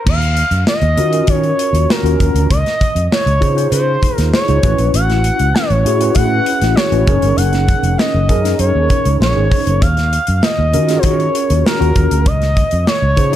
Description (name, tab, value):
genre	polished 1980s jazz-funk pop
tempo	98 BPM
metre	4/4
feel	straight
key	unclear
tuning	A4 = 441 Hz
part	expressive portamento lead	melody	0.0-13.4 s	Bb4 to F#5	-18 LUFS	right 1 dB	chorus
part	fretless electric bass	bass	0.1-13.4 s	F1 to Eb3	-15 LUFS	equal	none
part	modern studio drum kit	drums	0.1-13.4 s	crash cymbal, hi-hat, kick drum, snare drum	-17 LUFS	equal	none
part	mellow tine electric piano	accompaniment	1.0-13.4 s	Db4 to D5	-18 LUFS	left 1 dB	medium stereo tremolo, analog chorus
room	small room ambience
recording	dark, warm production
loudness	-11 LUFS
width	side -11 dB against mid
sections	0.1-13.4 A section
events	none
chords	0.1 Ebm9; 2.5 Dbmaj9; 4.6 A69; 7.1 Gb69; 9.8 Ebm9; 12.3 Dbmaj9